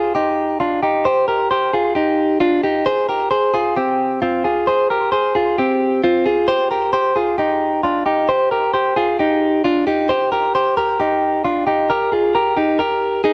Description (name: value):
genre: indie pop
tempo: 133 BPM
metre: 4/4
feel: straight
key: unclear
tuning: A4 = 440 Hz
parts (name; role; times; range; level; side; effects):
- direct-recorded clean electric guitar; solo; 0.0-13.3 s; C4 to C5; -17 LUFS; equal; phaser
room: moderate echo chamber reverb, RT60 2.0 s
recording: dark, warm production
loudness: -17 LUFS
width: mono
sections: 0.0-13.3 A section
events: none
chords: 0.0 Cmadd9; 2.9 Fm; 6.5 Cm